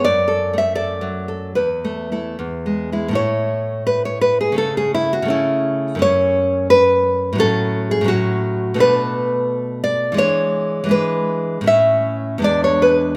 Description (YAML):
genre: romantic piece for solo classical guitar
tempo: 72-89 BPM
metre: 2/4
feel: rubato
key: A major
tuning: A4 = 440 Hz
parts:
  - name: nylon-string guitar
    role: solo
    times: 0.0-13.2 s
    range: E2 to E5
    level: -18 LUFS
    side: equal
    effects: none
room: moderate concert hall reverb, RT60 1.7 s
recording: none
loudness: -18 LUFS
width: mono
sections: 0.0-3.2 A section; 3.2-13.2 B section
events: none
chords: 0.0 D/F#; 1.6 Esus4; 2.4 E; 3.2 A; 4.6 A/C#; 6.0 F#m; 7.4 F#m/A; 8.8 Bm7; 10.2 E7; 11.7 A; 12.4 E7